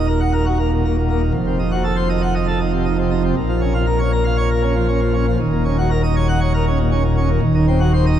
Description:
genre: classical, organ toccata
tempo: 118 BPM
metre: 4/4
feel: straight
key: unclear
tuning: A4 = 440 Hz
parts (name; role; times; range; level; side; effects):
- pipe organ, plenum; solo; 0.0-8.2 s; Eb1 to Gb5; -15 LUFS; equal; none
room: wet cathedral reverb, RT60 6.7 s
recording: dark, warm production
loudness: -15 LUFS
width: side -10 dB against mid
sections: 0.0-8.2 A section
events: none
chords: 0.0 Ebm; 1.3 F7b9; 3.4 Bbm; 5.4 Ebm7; 7.4 Cdim/Eb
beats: 0.34 0.84 | 1.35 1.85 2.35 2.86 | 3.37 3.87 4.38 4.88 | 5.39 5.90 6.41 6.91 | 7.42 7.93

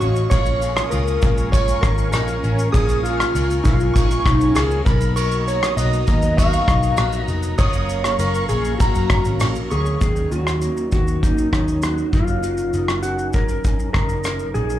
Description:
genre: indie pop, bedroom pop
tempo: 99 BPM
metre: 4/4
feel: straight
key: F# major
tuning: A4 = 440 Hz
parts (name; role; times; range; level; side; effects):
- clean lap steel guitar; melody; 0.0-14.8 s; D#4 to E#5; -23 LUFS; equal; lush chorus, slapback echo
- shimmering bell with halo; second line; 0.0-9.8 s; A#5 to E#6; -28 LUFS; equal; ensemble chorus, lush chorus, slapback echo
- electric guitar through a small old amp; accompaniment; 0.0-14.8 s; A#2 to A#4; -30 LUFS; left 4 dB; ensemble chorus, vibrato effect, slapback echo
- warm analog pad; sustained chords; 0.0-10.0 s; A#4 to D#6; -32 LUFS; left 1 dB; chorus, tremolo
- vintage muted picked electric bass; bass; 0.0-14.8 s; E#1 to F#2; -21 LUFS; equal; none
- soft brush drum kit; drums; 0.0-14.8 s; hi-hat, kick drum, ride cymbal, rim click, shaker; -21 LUFS; equal; none
- mellow tonewheel organ; accompaniment; 0.3-14.8 s; F#3 to E#5; -31 LUFS; right 3 dB; slow rotary speaker, slapback echo
room: little or no reverb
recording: live gig heard through the venue's PA, club reverb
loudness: -16 LUFS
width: side -12 dB against mid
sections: 0.0-10.0 A section; 10.0-14.8 B section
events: none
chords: 0.3 A#m7; 4.9 Bmaj7; 7.6 F#maj7; 10.0 D#m7; 12.1 F#6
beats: | 0.31 0.92 1.53 2.13 | 2.74 3.34 3.95 4.55 | 5.16 5.77 6.37 6.98 | 7.59 8.19 8.80 9.40 | 10.01 10.62 11.22 11.83 | 12.44 13.04 13.65 14.25

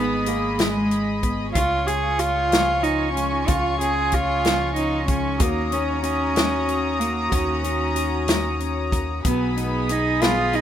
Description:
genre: six-eight pop ballad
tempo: 62 BPM (dotted quarters)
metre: 6/8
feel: straight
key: Eb minor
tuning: A4 = 440 Hz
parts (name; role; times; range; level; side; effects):
- warm cello; melody; 0.0-10.6 s; Ab3 to Ab4; -23 LUFS; right 2 dB; digital delay
- nylon-string guitar; accompaniment; 0.0-10.6 s; Ab2 to Ab4; -30 LUFS; left 2 dB; double-tracked left and right
- warm studio string section; sustained chords; 0.0-10.6 s; F4 to Eb6; -26 LUFS; left 2 dB; none
- fingered electric bass; bass; 0.0-10.6 s; Ab1 to Eb2; -28 LUFS; equal; none
- natural country drum kit; drums; 0.3-10.6 s; hi-hat, kick drum, snare drum; -23 LUFS; left 1 dB; none
- fingerpicked plugged-in steel-string acoustic guitar; arpeggios; 9.2-10.6 s; F#3 to G#4; -29 LUFS; left 7 dB; none
room: small room ambience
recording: rough home demo mix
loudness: -19 LUFS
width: side -10 dB against mid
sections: 0.0-10.6 A section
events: none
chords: 0.0 Abm; 1.6 Db; 5.4 Ebm7; 9.3 B6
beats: 0.60 | 1.56 2.52 | 3.49 4.45 | 5.41 6.36 | 7.32 8.28 | 9.25 10.22

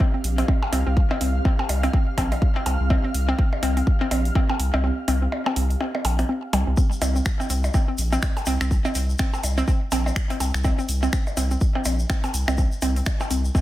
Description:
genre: minimal techno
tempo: 124 BPM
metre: 4/4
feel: swing 58% on 16ths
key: unclear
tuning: A4 = 440 Hz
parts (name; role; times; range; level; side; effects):
- hollow square pluck; riff; 0.0-13.6 s; G3 to C4; -28 LUFS; equal; chorus, vintage 12-bit sampler grit, sidechain pumping, digital delay
- electronic kick drum; drums; 0.0-13.6 s; none; -21 LUFS; equal; studio reverb
- percussion blips; percussion; 0.0-13.6 s; none; -30 LUFS; left 1 dB; studio reverb, digital delay
- ethereal airy pad; texture; 0.0-6.8 s; C4 to F6; -33 LUFS; right 1 dB; ensemble chorus, built-in reverb, sidechain pumping
- saturated sub bass; bass; 0.2-13.5 s; Bb1 to C2; -23 LUFS; equal; sidechain pumping
- house drum kit; drums; 0.2-13.4 s; finger snaps, hi-hat; -31 LUFS; right 1 dB; studio reverb
- tube shaker; percussion; 6.8-13.6 s; none; -35 LUFS; left 3 dB; none
room: little or no reverb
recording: none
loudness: -20 LUFS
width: side -15 dB against mid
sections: 0.0-6.8 A section; 6.8-13.6 B section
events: kick drops out 4.8-6.8; drop 6.8-13.6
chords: 0.0 C5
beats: 0.00 0.48 | 0.97 1.45 1.94 2.42 | 2.90 3.39 3.87 4.35 | 4.84 5.32 5.81 6.29 | 6.77 7.26 7.74 8.22 | 8.71 9.19 9.68 10.16 | 10.64 11.13 11.61 12.10 | 12.58 13.06 13.55

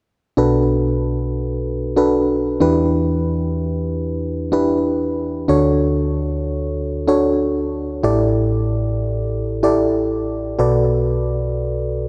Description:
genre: pop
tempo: 94 BPM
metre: 4/4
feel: straight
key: B minor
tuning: A4 = 440 Hz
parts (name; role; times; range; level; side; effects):
- FM electric piano; solo; 0.4-12.1 s; A1 to D5; -19 LUFS; equal; digital delay
room: wet plate reverb, RT60 3.6 s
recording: dark, warm production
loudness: -19 LUFS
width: mono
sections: 0.4-10.6 A section; 10.6-12.1 B section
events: none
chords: 0.4 Bm7; 2.6 Em7; 5.5 Dmaj7; 8.0 A7sus4; 10.6 Bm7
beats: | 0.38 1.02 1.66 2.29 | 2.93 3.57 4.21 4.85 | 5.49 6.12 6.76 7.40 | 8.04 8.68 9.31 9.95 | 10.59 11.23 11.87

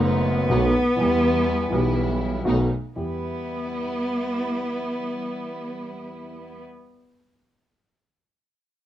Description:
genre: tango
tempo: 123 BPM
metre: 4/4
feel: rubato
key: E minor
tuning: A4 = 440 Hz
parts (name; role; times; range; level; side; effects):
- warm cello; second line; 0.0-6.6 s; B3; -25 LUFS; equal; none
- dark upright piano; accompaniment; 0.0-6.6 s; F#1 to G4; -26 LUFS; left 1 dB; none
- dark chamber string section; stabs; 0.0-6.6 s; G3 to E4; -32 LUFS; right 4 dB; none
- clear double bass; bass; 0.0-3.2 s; F#1 to E2; -27 LUFS; right 2 dB; none
room: light reverb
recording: dark, warm production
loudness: -21 LUFS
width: side -12 dB against mid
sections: 0.0-3.0 A section; 3.0-6.8 B section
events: cello solo 0.0-3.0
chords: 0.0 B7; 1.0 Em; 2.5 B7; 3.0 Em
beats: 0.02 0.51 | 0.99 1.48 1.97 2.47 | 2.96 3.46 3.94 4.42 | 4.90 5.38 5.87 6.36

